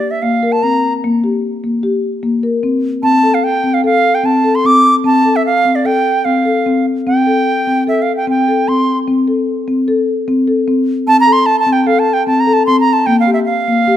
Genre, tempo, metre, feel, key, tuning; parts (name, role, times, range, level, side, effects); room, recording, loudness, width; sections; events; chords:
contemporary instrumental, contemporary; 150 BPM; 5/4; straight; A4 = 440 Hz
bright reedy wooden flute; melody; 0.0-14.0 s; D5 to D6; -13 LUFS; right 2 dB
marimba with soft mallets; arpeggios; 0.0-14.0 s; Bb3 to Bb4; -14 LUFS; left 3 dB
moderate recital hall reverb, RT60 1.6 s; -11 LUFS; side -11 dB against mid
0.0-14.0 A section
0.0 Gm; 3.0 C5; 13.1 Gm7